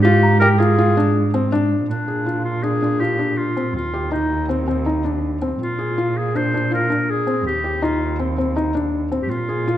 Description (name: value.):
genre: contemporary instrumental, chamber music in an uneven meter.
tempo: 162 BPM.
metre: 5/4.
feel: straight.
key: Bb mixolydian.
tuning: A4 = 440 Hz.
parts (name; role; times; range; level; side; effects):
bright clarinet; melody; 0.0-9.8 s; D4 to C5; -22 LUFS; left 1 dB; none.
felt-muted upright piano; arpeggios; 0.0-9.8 s; C4 to Ab4; -21 LUFS; left 3 dB; none.
muted cello; bass; 0.0-9.8 s; Eb2 to Bb2; -21 LUFS; right 3 dB; none.
small celesta; texture; 0.2-1.2 s; Bb5; -27 LUFS; equal; none.
room: wet recital hall reverb, RT60 1.6 s.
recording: none.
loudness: -17 LUFS.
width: side -12 dB against mid.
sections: 0.0-1.9 A section; 1.9-9.8 B section.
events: none.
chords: 0.0 N.C.; 1.9 Bb7; 3.7 Eb5; 5.6 Bb7; 7.5 Eb6.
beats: | 0.04 0.41 0.78 1.15 1.52 | 1.89 2.26 2.63 3.00 3.37 | 3.74 4.12 4.49 4.86 5.23 | 5.60 5.97 6.34 6.71 7.08 | 7.45 7.82 8.19 8.56 8.93 | 9.30 9.67.